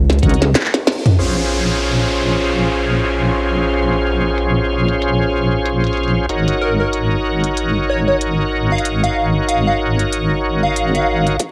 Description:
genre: glitch hop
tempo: 94 BPM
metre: 4/4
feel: swing 58% on 16ths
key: Bb minor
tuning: A4 = 439 Hz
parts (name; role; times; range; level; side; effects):
- glitchy drum kit; drums; 0.1-11.5 s; crash cymbal, handclaps, hi-hat, snare drum, toms; -20 LUFS; equal; high-pass filter on hats, low-pass filter on hats, cassette tape, high-pass filter on snare, low-pass filter on snare, high-pass filter on toms, low-pass filter on toms, high-pass filter on cymbals, low-pass filter on cymbals, high-pass filter on room, low-pass filter on room
- bright tonewheel organ; stabs; 0.2-11.4 s; Db4 to Db5; -21 LUFS; equal; overdrive, chorus vibrato, slow rotary speaker, sidechain pumping, low-pass filter, cassette tape, tape echo
- wobble bass; bass; 0.2-11.4 s; Ab1 to Db2; -21 LUFS; equal; chorus
- electronic kick drum; drums; 0.2-0.4, 11.4-11.5 s; none; -19 LUFS; equal; overdrive, high-pass filter on kick, cassette tape, high-pass filter on room
- downlifter and riser; sound effects; 1.2-6.3, 11.4-11.5 s; none; -27 LUFS; equal; none
- plucky unison lead; melody; 6.6-11.4 s; Bb4 to F5; -23 LUFS; equal; lush chorus, cassette tape
room: light reverb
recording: home recording on cassette, vinyl crackle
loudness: -17 LUFS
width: mono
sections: 0.0-1.2 A section; 1.2-11.4 B section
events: drum fill 0.0-1.2; band accent 0.9-1.2; filter sweep on drum 1.2-11.4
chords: 0.0 Ab7sus4 (rootless); 1.2 Bbm7; 6.3 Ab7sus4

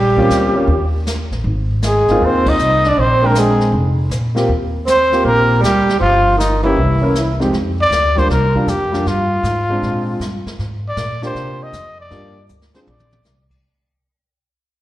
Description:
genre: jazz, small-group swing and bop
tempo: 158 BPM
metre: 4/4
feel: swing 67% on 8ths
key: unclear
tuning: A4 = 440 Hz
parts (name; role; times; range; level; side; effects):
- breathy trumpet; melody; 0.0-13.5 s; Eb4 to Eb5; -16 LUFS; equal; slapback echo
- breathy tenor saxophone; second line; 0.0-7.4 s; Eb3 to Eb4; -19 LUFS; right 3 dB; slapback echo
- upright bass; bass; 0.0-13.6 s; F1 to C3; -18 LUFS; equal; none
- warm concert grand piano; accompaniment; 0.2-12.9 s; F2 to G5; -19 LUFS; equal; slapback echo
- jazz brush drum kit; drums; 0.2-13.6 s; brushed snare drum, crash cymbal, hi-hat, kick drum, ride cymbal, snare drum, toms; -26 LUFS; equal; slapback echo
room: light reverb, studio reverb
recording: live gig heard through the venue's PA, recital hall reverb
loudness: -13 LUFS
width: side -14 dB against mid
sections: 0.0-7.5 A section; 7.5-13.6 B section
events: band accent 2.4; fade-out 7.5-13.6; drum fill 12.5-13.2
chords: 0.0 Bbmadd9; 0.7 N.C.; 1.4 Ab69; 3.0 Bb13; 4.5 Eb69; 6.8 C7b9; 7.5 Dm; 8.3 C7sus4; 9.1 G5; 9.8 Bb7; 10.6 Fm; 11.3 C7sus4; 12.1 Gm7; 12.9 Bb

